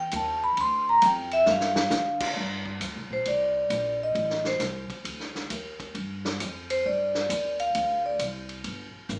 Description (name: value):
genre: jazz, small-group swing and bop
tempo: 134 BPM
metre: 4/4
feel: swing 66% on 8ths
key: C minor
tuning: A4 = 440 Hz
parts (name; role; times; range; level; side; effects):
- vibraphone with medium mallets; melody; 0.0-8.2 s; C5 to C6; -26 LUFS; equal; none
- upright bass; bass; 0.0-9.2 s; G1 to D3; -39 LUFS; equal; none
- vintage drum kit; drums; 0.1-9.2 s; crash cymbal, hi-hat, kick drum, ride cymbal, snare drum; -36 LUFS; equal; none
room: moderate large studio reverb, RT60 0.8 s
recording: band playing live in one room, small speaker sound, faint mains hum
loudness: -27 LUFS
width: mono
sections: 0.0-2.4 A section; 2.4-9.2 B section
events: vibraphone solo 0.0-2.4; drum fill 1.5-1.9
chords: 0.0 Ebaug; 0.6 Dm11; 1.5 G5; 2.4 Csus2; 4.2 Adim; 5.1 N.C.; 6.0 G5; 7.7 Csus24; 8.6 N.C.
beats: 0.12 | 0.57 1.02 1.47 1.92 | 2.37 2.81 3.26 3.71 | 4.16 4.61 5.06 5.51 | 5.96 6.40 6.85 7.30 | 7.75 8.19 8.64 9.09